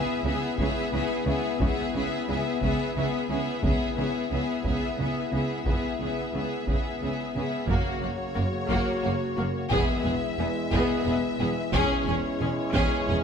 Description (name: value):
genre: cinematic, epic orchestral film score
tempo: 59 BPM (dotted quarters)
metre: 6/8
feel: straight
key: C# minor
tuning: A4 = 440 Hz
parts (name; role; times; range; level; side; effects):
- rich studio violin section; melody; 0.0-13.2 s; C#5 to E5; -34 LUFS; left 5 dB; none
- rich symphonic violin section; second line; 0.0-13.2 s; F#4 to G#4; -33 LUFS; left 1 dB; none
- rich symphonic viola section; accompaniment; 0.0-13.2 s; A#3 to C#4; -32 LUFS; equal; none
- warm French horn section; sustained chords; 0.0-13.2 s; A#3 to F#4; -32 LUFS; left 5 dB; none
- rich chamber cello section; bass; 0.3-13.2 s; E2 to C#3; -33 LUFS; right 2 dB; none
- rich symphonic double bass section; bass; 0.3-13.2 s; E1 to C#2; -33 LUFS; right 3 dB; none
- taiko ensemble; drums; 0.6-13.2 s; none; -31 LUFS; equal; none
- bright trombone section; sustained chords; 7.7-13.2 s; C#3 to G#3; -34 LUFS; right 4 dB; none
room: moderate scoring stage reverb, RT60 1.7 s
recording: none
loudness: -24 LUFS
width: side -7 dB against mid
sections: 0.0-7.7 A section; 7.7-13.2 B section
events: none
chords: 0.0 C#m7; 7.7 F#; 9.7 E; 11.7 C#m/E